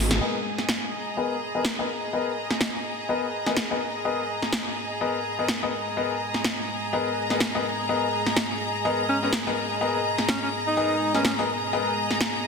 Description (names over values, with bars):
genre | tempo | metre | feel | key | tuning
bass house | 125 BPM | 4/4 | swing 58% on 16ths | G# minor | A4 = 441 Hz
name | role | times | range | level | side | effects
deep dark ambient pad | sustained chords | 0.0-12.5 s | G#3 to D#5 | -37 LUFS | left 1 dB | chorus, built-in reverb
clear studio string section | texture | 0.0-12.5 s | G#4 to D#6 | -29 LUFS | equal | none
big-room dance drum kit | drums | 0.1-12.3 s | hi-hat, snare drum | -28 LUFS | equal | none
bright concert grand piano | stabs | 0.2-11.9 s | B3 to D#5 | -29 LUFS | left 5 dB | low-pass filter, ping-pong delay
clear alto saxophone | melody | 9.1-11.3 s | C#4 to D#4 | -28 LUFS | right 1 dB | ping-pong delay
room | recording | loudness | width
wet lush hall reverb, RT60 1.8 s | dense, heavily limited modern master | -23 LUFS | side -5 dB against mid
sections
0.2-12.5 A section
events
drum fill 0.0; band accent 0.1; filter sweep on grand piano 0.2-12.5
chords
0.2 G#madd9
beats
| 0.21 0.69 1.17 1.65 | 2.13 2.61 3.09 3.57 | 4.05 4.53 5.01 5.49 | 5.97 6.45 6.93 7.41 | 7.89 8.37 8.85 9.33 | 9.81 10.29 10.77 11.25 | 11.73 12.21